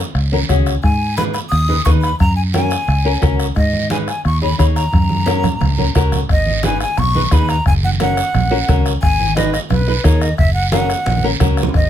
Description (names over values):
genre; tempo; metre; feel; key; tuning
latin, cumbia; 176 BPM; 4/4; straight; G# minor; A4 = 440 Hz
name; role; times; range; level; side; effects
fingered electric bass; bass; 0.1-11.9 s; F#1 to G#2; -17 LUFS; right 1 dB; none
bombo; percussion; 0.1-11.9 s; none; -18 LUFS; left 1 dB; none
congas; percussion; 0.2-11.9 s; none; -23 LUFS; right 2 dB; none
guiro; percussion; 0.2-11.9 s; none; -28 LUFS; right 7 dB; none
flamenco guitar; accompaniment; 0.3-11.6 s; C#4 to C#5; -20 LUFS; left 2 dB; none
breathy jazz flute; melody; 0.8-11.9 s; B4 to D#6; -20 LUFS; equal; none
room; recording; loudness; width
little or no reverb; close, detailed microphones; -13 LUFS; side -10 dB against mid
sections
0.0-6.3 A section; 6.3-11.9 B section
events
drum fill 4.9-6.3, 11.1-11.7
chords
0.0 F#5; 0.8 G#m; 2.2 F#; 3.6 G#m; 4.9 F#; 6.3 G#m; 7.7 F#; 9.0 G#m; 10.4 F#